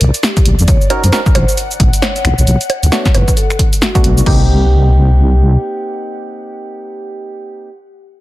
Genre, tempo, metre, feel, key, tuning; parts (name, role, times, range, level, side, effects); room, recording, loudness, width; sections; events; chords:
UK garage, two-step garage; 134 BPM; 4/4; swing 60% on 16ths; C minor; A4 = 440 Hz
ethereal airy pad; sustained chords; 0.0-4.3 s; D5 to Gb5; -28 LUFS; left 7 dB; ensemble chorus, built-in reverb, sidechain pumping
deep soft wobble bass; bass; 0.0-5.6 s; F#1 to Gb2; -10 LUFS; equal; chorus, sidechain pumping
punchy analog drum machine; drums; 0.0-4.4 s; bongos, cabasa, crash cymbal, finger snaps, hi-hat, snare drum; -17 LUFS; right 1 dB
vibraphone with soft mallets; melody; 0.2-7.7 s; F#4 to Db5; -24 LUFS; equal; ping-pong delay
electronic kick drum; drums; 0.4-4.4 s; -12 LUFS; equal
percussive organ stab; stabs; 0.9-7.7 s; A3 to Bb4; -21 LUFS; right 1 dB; chorus, digital delay
digital ambience; dense, heavily limited modern master; -9 LUFS; side -17 dB against mid
0.0-4.3 A section; 4.3-7.8 B section
drop 0.0-4.3
0.0 N.C.; 0.7 Ebm7; 2.2 Bm7; 4.3 Cm7